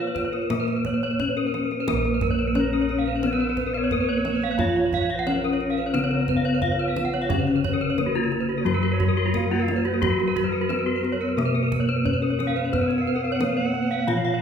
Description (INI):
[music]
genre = Balinese gamelan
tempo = 88 BPM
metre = 4/4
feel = straight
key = Bb pelog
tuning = A4 = 440 Hz
[part]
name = gamelan-type bronze metallophone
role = melody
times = 0.0-14.4 s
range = Gb3 to F4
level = -26 LUFS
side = left 1 dB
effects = none
[part]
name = gamelan-type bronze metallophone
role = accompaniment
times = 0.0-14.4 s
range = Db3 to Cb4+35c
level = -31 LUFS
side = left 4 dB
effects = none
[part]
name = gamelan-type bronze metallophone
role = arpeggios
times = 0.0-14.3 s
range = F4 to F5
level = -28 LUFS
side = left 4 dB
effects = none
[part]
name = gamelan-type bossed gongs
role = bass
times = 0.0-14.4 s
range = Bb1 to Cb5+35c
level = -29 LUFS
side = equal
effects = none
[part]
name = gamelan-type bronze metallophone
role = arpeggios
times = 0.1-14.4 s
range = F4 to Gb5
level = -29 LUFS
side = right 4 dB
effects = none
[part]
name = kendang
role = percussion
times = 0.2-14.3 s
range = none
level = -32 LUFS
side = right 2 dB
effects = none
[part]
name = mellow reedy alto recorder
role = second line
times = 2.6-14.4 s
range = Bb4 to Gb5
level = -34 LUFS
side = right 3 dB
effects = none
[sound]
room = wet recital hall reverb, RT60 1.6 s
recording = recorded in a church or concert hall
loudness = -21 LUFS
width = side -7 dB against mid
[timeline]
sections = 0.0-1.9 A section; 1.9-14.4 B section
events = none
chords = none